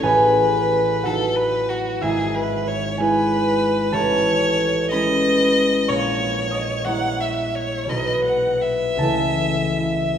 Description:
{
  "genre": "classical, romantic duo for violin and harp",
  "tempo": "48-65 BPM (dotted quarters)",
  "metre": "6/8",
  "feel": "rubato",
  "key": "unclear",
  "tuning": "A4 = 442 Hz",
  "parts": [
    { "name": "rich violin", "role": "melody", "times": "0.0-10.2 s", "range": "F#4 to F#5", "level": "-23 LUFS", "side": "left 1 dB", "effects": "none" },
    { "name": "concert harp", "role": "accompaniment", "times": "0.0-10.2 s", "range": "G#1 to D#6", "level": "-19 LUFS", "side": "equal", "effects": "none" }
  ],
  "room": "wet concert hall reverb, RT60 2.2 s",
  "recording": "none",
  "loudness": "-18 LUFS",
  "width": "side -8 dB against mid",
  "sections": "0.0-10.2 A section",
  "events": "none",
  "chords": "0.0 B7/A; 2.0 E/G#; 3.9 Amaj7; 5.9 A#dim7; 7.9 B; 9.0 A/C#"
}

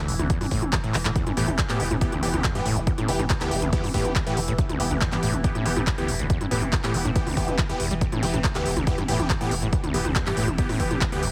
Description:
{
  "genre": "driving peak-time techno",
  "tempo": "140 BPM",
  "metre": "4/4",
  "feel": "straight",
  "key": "E minor",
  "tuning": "A4 = 440 Hz",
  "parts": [
    { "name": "overdriven acid bass", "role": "riff", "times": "0.0-11.3 s", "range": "E1 to G3", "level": "-31 LUFS", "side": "equal", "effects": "distortion, sidechain pumping, digital delay" },
    { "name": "overtone-sweeping drone", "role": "drone", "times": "0.0-11.3 s", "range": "E3", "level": "-37 LUFS", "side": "equal", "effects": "none" },
    { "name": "saturated sub bass", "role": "bass", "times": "0.1-11.3 s", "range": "E1", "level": "-33 LUFS", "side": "equal", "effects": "sidechain pumping, low-pass filter" },
    { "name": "techno drum kit", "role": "drums", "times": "0.1-11.3 s", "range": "handclaps, hi-hat, toms", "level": "-31 LUFS", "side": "equal", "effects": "sidechain pumping on hats, sidechain pumping on toms" },
    { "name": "electronic kick drum", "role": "drums", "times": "0.3-11.1 s", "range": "none", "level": "-28 LUFS", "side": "equal", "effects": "none" },
    { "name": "supersaw stab", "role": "stabs", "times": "1.4-11.2 s", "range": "E3 to G4", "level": "-31 LUFS", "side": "equal", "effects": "phaser, cassette tape, sidechain pumping, digital delay" }
  ],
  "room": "light reverb, digital ambience",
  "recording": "heavily compressed radio sound",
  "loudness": "-24 LUFS",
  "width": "mono",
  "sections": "0.0-11.3 A section",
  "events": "drum fill 0.9",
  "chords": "0.0 Em"
}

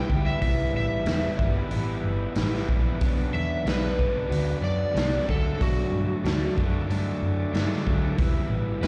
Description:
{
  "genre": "blues rock power trio and southern rock",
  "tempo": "93 BPM",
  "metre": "4/4",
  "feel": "straight",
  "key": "E minor",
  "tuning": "A4 = 440 Hz",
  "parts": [
    { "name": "overdriven slide guitar", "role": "melody", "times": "0.0-8.9 s", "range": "F#4 to G5", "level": "-32 LUFS", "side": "equal", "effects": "none" },
    { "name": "overdriven tonewheel organ", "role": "sustained chords", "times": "0.0-8.9 s", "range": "D4 to E5", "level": "-42 LUFS", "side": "equal", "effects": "slow rotary speaker" },
    { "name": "crunchy overdriven guitar", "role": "riff", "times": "0.0-8.9 s", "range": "B2 to E4", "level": "-32 LUFS", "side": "equal", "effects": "slapback echo" },
    { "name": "vintage muted picked electric bass", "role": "bass", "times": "0.1-8.9 s", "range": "E1 to B2", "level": "-30 LUFS", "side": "equal", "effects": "none" },
    { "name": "raw garage drum kit", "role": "drums", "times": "0.1-8.9 s", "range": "hi-hat, kick drum, snare drum", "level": "-30 LUFS", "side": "equal", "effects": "none" }
  ],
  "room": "light reverb, small room reverb",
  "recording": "live gig heard through the venue's PA, club reverb",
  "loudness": "-25 LUFS",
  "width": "mono",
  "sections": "0.0-8.9 A section",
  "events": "none",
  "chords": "0.0 Em; 3.0 Bm; 5.3 D; 8.2 Em"
}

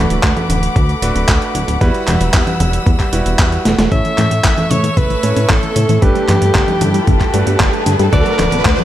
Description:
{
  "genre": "italo disco",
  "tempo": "114 BPM",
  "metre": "4/4",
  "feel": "straight",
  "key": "unclear",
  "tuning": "A4 = 440 Hz",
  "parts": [
    { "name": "warm chamber string section", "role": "sustained chords", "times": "0.0-8.8 s", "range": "G3 to E6", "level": "-23 LUFS", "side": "left 2 dB", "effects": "none" },
    { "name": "bright electric grand piano", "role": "stabs", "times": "0.0-8.8 s", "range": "G3 to C#5", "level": "-22 LUFS", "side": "right 3 dB", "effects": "low-pass filter, tape echo" },
    { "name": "chorused synth bass", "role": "bass", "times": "0.0-8.7 s", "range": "D1 to A2", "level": "-17 LUFS", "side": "equal", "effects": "none" },
    { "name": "dusty soul sampler-style drum kit", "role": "drums", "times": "0.1-8.8 s", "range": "congas, handclaps, hi-hat, snare drum", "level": "-18 LUFS", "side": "equal", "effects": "overdrive, studio reverb" },
    { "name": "electronic kick drum", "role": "drums", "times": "0.2-8.8 s", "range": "none", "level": "-15 LUFS", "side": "equal", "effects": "overdrive, studio reverb" },
    { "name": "bright alto saxophone", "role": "melody", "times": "3.9-8.8 s", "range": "G4 to E5", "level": "-19 LUFS", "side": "equal", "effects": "tape echo" },
    { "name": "wide unison pluck", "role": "arpeggios", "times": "3.9-8.8 s", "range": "C#3 to C#4", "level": "-22 LUFS", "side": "left 2 dB", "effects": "tape echo" },
    { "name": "riser", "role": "sound effects", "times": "5.2-8.8 s", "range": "none", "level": "-22 LUFS", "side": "equal", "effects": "none" }
  ],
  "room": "light reverb, digital ambience",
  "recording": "none",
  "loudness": "-11 LUFS",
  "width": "side -12 dB against mid",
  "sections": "0.0-3.9 A section; 3.9-8.8 B section",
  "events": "drum fill 3.7; filter sweep on synth arpeggio sound 3.9-8.8; filter sweep on electric grand piano 3.9-8.8; riser 5.2-8.8",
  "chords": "0.0 D6; 1.8 Emadd9; 3.9 A; 6.0 Gadd9; 8.1 D6"
}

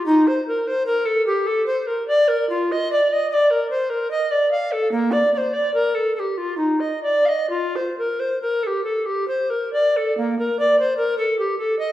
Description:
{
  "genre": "classical, baroque-style fantasia for unaccompanied recorder",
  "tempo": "61-76 BPM",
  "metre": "3/4",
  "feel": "rubato",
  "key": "Bb major",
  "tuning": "A4 = 440 Hz",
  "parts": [
    { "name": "bass recorder", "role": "solo", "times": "0.0-11.9 s", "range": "Bb3 to F5", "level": "-18 LUFS", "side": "equal", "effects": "none" }
  ],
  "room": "wet recital hall reverb, RT60 1.4 s",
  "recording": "heard from further back in the room",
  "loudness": "-18 LUFS",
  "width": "side -14 dB against mid",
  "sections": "0.0-10.2 A section; 10.2-11.9 B section",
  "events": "none",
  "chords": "none"
}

